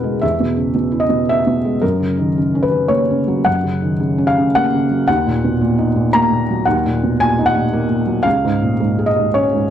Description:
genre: neoclassical minimalist piano.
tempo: 112 BPM.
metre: 3/4.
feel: rubato.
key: F# major.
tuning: A4 = 440 Hz.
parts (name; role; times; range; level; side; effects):
felt-muted upright piano; solo; 0.0-9.7 s; C#2 to A#5; -14 LUFS; equal; slapback echo.
room: light reverb.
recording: dry, close 1970s-style studio recording.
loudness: -14 LUFS.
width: side -10 dB against mid.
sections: 0.0-9.7 A section.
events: none.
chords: 0.0 E; 1.8 F#; 5.1 D#m; 8.2 C#.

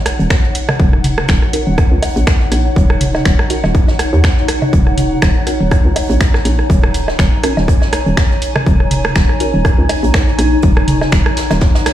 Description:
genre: minimal techno.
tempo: 122 BPM.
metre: 4/4.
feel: swing 56% on 16ths.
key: Eb minor.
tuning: A4 = 441 Hz.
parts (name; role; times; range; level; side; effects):
granular cloud pad; texture; 0.0-11.9 s; Eb4 to Ab5; -20 LUFS; equal; built-in reverb, sidechain pumping.
jazz brush drum kit; drums; 0.1-11.9 s; hi-hat, snare drum; -27 LUFS; right 1 dB; sidechain pumping on hats, high-pass filter on hats, high-pass filter on snare, high-pass filter on room.
punchy analog drum machine; drums; 0.1-11.9 s; finger snaps, hi-hat; -22 LUFS; equal; none.
techno drum kit; percussion; 0.1-11.9 s; rim click, toms, woodblock; -20 LUFS; right 2 dB; digital delay.
hollow knocking FM bass; bass; 0.2-11.7 s; Eb1 to Eb2; -15 LUFS; equal; tube saturation, sidechain pumping.
electronic kick drum; drums; 0.3-11.7 s; none; -13 LUFS; equal; overdrive.
filtered dub chord stab; stabs; 1.5-9.5 s; Db4 to Bb4; -24 LUFS; equal; phaser, analog chorus, digital delay.
room: light reverb.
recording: played on a big sound system in a bare room, stone room reverb.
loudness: -11 LUFS.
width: side -12 dB against mid.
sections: 0.0-11.9 A section.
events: filter sweep on synth stab 0.0-11.9.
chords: 0.0 Ebm7.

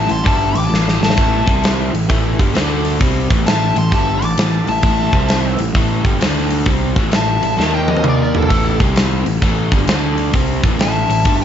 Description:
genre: blues rock power trio and southern rock.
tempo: 131 BPM.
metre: 4/4.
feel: swing 65% on 8ths.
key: A minor.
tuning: A4 = 440 Hz.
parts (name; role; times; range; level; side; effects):
dark smooth lead guitar; melody; 0.0-11.4 s; A4 to D6; -20 LUFS; left 3 dB; wah, overdrive.
biting lead guitar; second line; 0.0-11.4 s; E4 to A5; -29 LUFS; right 5 dB; overdrive, tape echo.
overdriven electric guitar; riff; 0.0-11.4 s; G2 to D#4; -19 LUFS; left 1 dB; spring reverb.
fuzz picked electric bass; bass; 0.0-11.4 s; G1 to D#2; -20 LUFS; equal; overdrive.
big rock drum kit; drums; 0.1-11.4 s; hi-hat, kick drum, snare drum, toms; -17 LUFS; equal; none.
room: light reverb.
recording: nothing above 7.7 kHz.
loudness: -13 LUFS.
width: side -9 dB against mid.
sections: 0.0-11.4 A section.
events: drum fill 0.7-1.2, 7.6-8.5.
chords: 0.0 A5; 1.4 C5; 1.9 A5; 2.5 D5; 3.0 Am; 5.1 C5; 5.5 A5; 6.2 D5; 6.7 Am; 7.6 D#5; 8.5 A5; 8.7 C5; 9.2 A5; 9.9 D5; 10.3 Am.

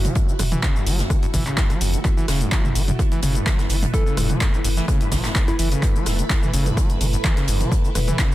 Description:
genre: acid house.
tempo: 127 BPM.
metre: 4/4.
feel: swing 53% on 16ths.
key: F# minor pentatonic.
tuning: A4 = 441 Hz.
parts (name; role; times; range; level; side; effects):
string machine, full ensemble; sustained chords; 0.0-8.3 s; A3 to B4; -29 LUFS; equal; phaser, ensemble chorus, sidechain pumping.
overdriven acid bass; riff; 0.0-8.3 s; E2 to F#3; -26 LUFS; equal; distortion, tube saturation, sidechain pumping, ping-pong delay.
round analog bass; bass; 0.0-8.1 s; E1 to F#1; -23 LUFS; equal; sidechain pumping.
punchy analog drum machine; drums; 0.0-8.3 s; handclaps, hi-hat, rim click, shaker, toms; -25 LUFS; equal; overdrive.
swinging big-band drum kit; drums; 0.1-8.3 s; hi-hat, snare drum; -34 LUFS; right 2 dB; sidechain pumping on hats, high-pass filter on hats, high-pass filter on snare, high-pass filter on room.
electronic kick drum; drums; 0.2-8.3 s; none; -20 LUFS; equal; overdrive.
soft struck synth lead; melody; 3.9-5.7 s; E4 to A4; -32 LUFS; left 1 dB; chorus, dub echo.
room: little or no reverb.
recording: dense, heavily limited modern master.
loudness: -18 LUFS.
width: side -15 dB against mid.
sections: 0.0-8.3 A section.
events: none.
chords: 0.0 F#m7.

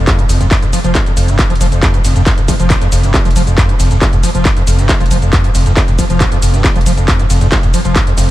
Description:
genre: driving peak-time techno.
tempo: 137 BPM.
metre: 4/4.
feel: straight.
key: F minor.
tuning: A4 = 440 Hz.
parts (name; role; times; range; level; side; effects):
overdriven acid bass; riff; 0.0-8.3 s; F1 to F3; -15 LUFS; equal; ensemble chorus, sidechain pumping, tape echo.
saturated sub bass; bass; 0.0-8.3 s; F1; -16 LUFS; equal; tube saturation, sidechain pumping, low-pass filter.
electronic kick drum; drums; 0.1-8.0 s; none; -13 LUFS; equal; distortion.
open jazz drum kit; drums; 0.1-8.3 s; hi-hat, snare drum; -31 LUFS; right 3 dB; none.
techno drum kit; drums; 0.1-8.3 s; handclaps, hi-hat, ride cymbal, shaker; -18 LUFS; equal; sidechain pumping on hats, sidechain pumping on perc, sidechain pumping on cymbals.
room: light reverb.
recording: none.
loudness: -9 LUFS.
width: side -15 dB against mid.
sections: 0.0-8.3 A section.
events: none.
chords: none.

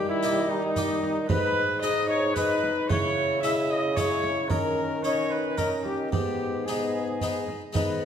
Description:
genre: classical, renaissance-style consort dance.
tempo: 112 BPM.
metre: 3/4.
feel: straight.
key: G# minor.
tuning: A4 = 440 Hz.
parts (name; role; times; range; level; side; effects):
warm cornet; melody; 0.0-8.1 s; D#4 to E5; -31 LUFS; left 5 dB; none.
warm viola; second line; 0.0-8.1 s; B3 to E5; -30 LUFS; right 4 dB; none.
harpsichord; accompaniment; 0.0-8.1 s; G#2 to G#4; -31 LUFS; left 3 dB; none.
warm trombone; accompaniment; 0.0-8.1 s; D#3 to E4; -32 LUFS; left 3 dB; none.
dark bassoon; bass; 0.0-8.1 s; G#2 to D#3; -31 LUFS; right 2 dB; none.
frame drum; percussion; 0.8-8.0 s; none; -31 LUFS; right 3 dB; none.
room: wet recital hall reverb, RT60 1.5 s.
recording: none.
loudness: -24 LUFS.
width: side -8 dB against mid.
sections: 0.0-7.8 A section.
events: none.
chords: 0.0 D#; 1.3 G#m; 2.9 C#m; 4.5 D#5; 6.1 G#m.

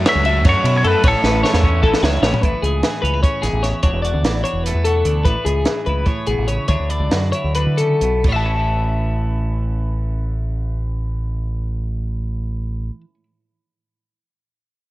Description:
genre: math rock and midwest emo.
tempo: 252-304 BPM (eighths).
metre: 7/8.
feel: straight.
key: A major.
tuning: A4 = 442 Hz.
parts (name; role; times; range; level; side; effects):
twelve-string electric guitar; accompaniment; 0.0-13.2 s; E2 to G#4; -26 LUFS; right 4 dB; spring reverb.
twelve-string electric guitar; arpeggios; 0.0-13.0 s; G#4 to A5; -21 LUFS; left 4 dB; none.
raw garage guitar; riff; 0.0-2.4 s; A2 to F#4; -26 LUFS; right 2 dB; overdrive.
growling fingered electric bass; bass; 0.0-12.9 s; E1 to D3; -20 LUFS; equal; overdrive.
twangy electric guitar; melody; 0.1-2.0 s; A4 to E5; -20 LUFS; equal; tape echo.
compact cocktail drum kit; drums; 0.1-8.4 s; crash cymbal, hi-hat, kick drum, ride cymbal, snare drum, toms; -19 LUFS; equal; none.
room: light reverb.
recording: worn, warbling old tape, cassette tape, warbly pitch drift.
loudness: -16 LUFS.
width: side -17 dB against mid.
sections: 0.0-2.4 A section; 2.4-8.3 B section; 8.3-11.6 C section.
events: drum fill 1.2-2.4; slowing down 5.2-8.3.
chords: 0.0 F#m7; 1.0 A; 2.4 Amaj9; 3.8 E9sus4; 5.2 Amaj9; 6.7 Dmaj9; 8.3 A.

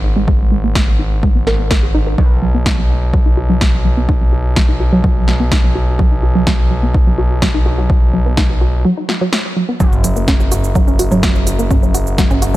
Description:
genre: melodic techno.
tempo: 126 BPM.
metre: 4/4.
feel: straight.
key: unclear.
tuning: A4 = 441 Hz.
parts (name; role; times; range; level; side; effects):
analog pluck; arpeggios; 0.0-12.6 s; F#3 to A#4; -18 LUFS; right 1 dB; chorus, sidechain pumping, digital delay.
gritty driven synth bass; bass; 0.0-12.6 s; F#1 to B1; -16 LUFS; equal; tube saturation, sidechain pumping.
electronic kick drum; drums; 0.3-12.3 s; none; -15 LUFS; equal; none.
deep house drum kit; drums; 0.8-12.6 s; hi-hat, shaker, snare drum, toms; -20 LUFS; equal; none.
room: little or no reverb.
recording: dark, warm production.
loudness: -11 LUFS.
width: side -16 dB against mid.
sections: 0.0-12.6 A section.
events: filter sweep on synth arpeggio sound 0.0-12.6; break 8.8-9.8.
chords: 0.0 G#sus2; 2.2 B5; 9.8 N.C..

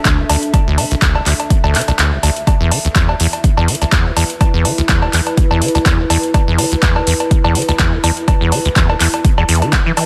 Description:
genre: acid house.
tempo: 124 BPM.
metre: 4/4.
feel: swing 55% on 16ths.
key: unclear.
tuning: A4 = 440 Hz.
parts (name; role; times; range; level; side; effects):
warbly tape-like pad; texture; 0.0-10.1 s; D4 to E5; -25 LUFS; equal; chorus, built-in reverb, sidechain pumping.
acid bass, saw; riff; 0.1-10.0 s; E1 to E3; -19 LUFS; equal; tube saturation, analog chorus, dub echo.
electro analog drum machine; drums; 0.1-10.1 s; cowbell, handclaps, hi-hat; -20 LUFS; equal; none.
electronic kick drum; drums; 0.1-9.8 s; none; -16 LUFS; equal; overdrive.
room: light reverb, digital ambience.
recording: none.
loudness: -14 LUFS.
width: mono.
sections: 0.0-10.1 A section.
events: kick drops out 2.0-2.5.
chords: 0.0 D5; 2.5 E5.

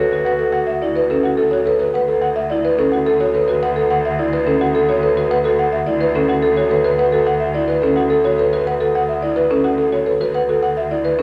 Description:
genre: classical, minimalist pattern music.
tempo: 107 BPM.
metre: 3/4.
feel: straight.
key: D major.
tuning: A4 = 440 Hz.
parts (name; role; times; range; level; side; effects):
buzzing marimba with medium mallets; melody; 0.0-11.2 s; A4 to F#5; -19 LUFS; equal; none.
clear clarinet; second line; 0.0-1.6 s; F#4; -26 LUFS; equal; none.
marimba with soft mallets; arpeggios; 0.0-11.2 s; C#4 to B4; -23 LUFS; equal; none.
rich cello; bass; 0.0-11.2 s; D2; -27 LUFS; equal; none.
room: wet large studio reverb, RT60 1.2 s.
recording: none.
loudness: -17 LUFS.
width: mono.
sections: 0.0-11.2 A section.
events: none.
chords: 0.0 D6.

